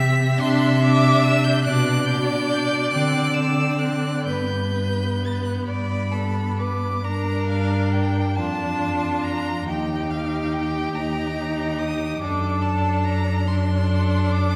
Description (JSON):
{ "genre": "classical, slow romantic movement for string quartet", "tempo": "42-49 BPM (dotted quarters)", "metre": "6/8", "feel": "rubato", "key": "G major, G minor from 7.1 s", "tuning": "A4 = 440 Hz", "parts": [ { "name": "clear violin", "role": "melody", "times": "0.0-14.6 s", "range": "F5 to B6", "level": "-31 LUFS", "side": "equal", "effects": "none" }, { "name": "clear violin", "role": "second line", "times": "0.0-14.6 s", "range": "F4 to E5", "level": "-30 LUFS", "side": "equal", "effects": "none" }, { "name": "clear viola", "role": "accompaniment", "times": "0.0-14.6 s", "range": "B3 to Eb4", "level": "-29 LUFS", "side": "equal", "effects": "none" }, { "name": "warm cello", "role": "bass", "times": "0.0-14.6 s", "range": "Eb2 to D3", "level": "-25 LUFS", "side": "equal", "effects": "none" } ], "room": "wet concert hall reverb, RT60 1.9 s", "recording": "heard from further back in the room", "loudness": "-22 LUFS", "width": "mono", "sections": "0.0-7.1 A section; 7.1-14.6 B section", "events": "none", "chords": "0.4 Cadd9; 1.7 G/B; 2.9 D9; 4.3 G; 7.1 Gm; 9.7 Eb; 12.2 D/F#" }